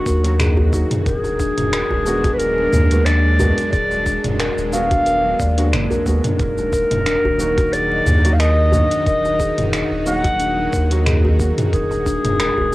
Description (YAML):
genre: organic downtempo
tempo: 90 BPM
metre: 4/4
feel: swing 54% on 16ths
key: Eb harmonic minor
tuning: A4 = 440 Hz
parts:
  - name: mellow clarinet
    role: melody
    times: 0.0-12.7 s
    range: Gb4 to Gb5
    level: -20 LUFS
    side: equal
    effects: cassette tape, tape echo
  - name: felt-muted upright piano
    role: accompaniment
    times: 0.0-12.7 s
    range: D3 to Gb4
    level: -27 LUFS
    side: right 2 dB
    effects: sidechain pumping, cassette tape, tape echo
  - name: bowed-like drone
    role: sustained chords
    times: 0.0-12.7 s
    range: Bb2 to Gb4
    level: -27 LUFS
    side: equal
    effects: built-in reverb, sidechain pumping, cassette tape
  - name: steel tongue drum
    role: arpeggios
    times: 0.1-12.7 s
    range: Bb3 to D5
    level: -24 LUFS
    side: left 2 dB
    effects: cassette tape, tape echo
  - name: round analog bass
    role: bass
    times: 0.1-12.7 s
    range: Eb1 to Eb2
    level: -19 LUFS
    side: equal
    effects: sidechain pumping
  - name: deep house drum kit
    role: drums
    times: 0.1-12.5 s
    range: finger snaps, hi-hat, shaker, toms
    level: -23 LUFS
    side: equal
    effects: overdrive, cassette tape
  - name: electronic kick drum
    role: drums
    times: 0.1-12.2 s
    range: none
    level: -22 LUFS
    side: equal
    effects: overdrive, cassette tape
  - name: djembe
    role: percussion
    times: 0.6-12.7 s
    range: none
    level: -27 LUFS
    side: right 1 dB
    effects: none
room: moderate booth ambience, RT60 0.2 s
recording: home recording on cassette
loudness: -15 LUFS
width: side -18 dB against mid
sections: 0.0-12.7 A section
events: none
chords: 0.0 Ebm; 1.1 Bb7b9b13/Eb; 6.4 Ebm; 11.7 Bb7/Eb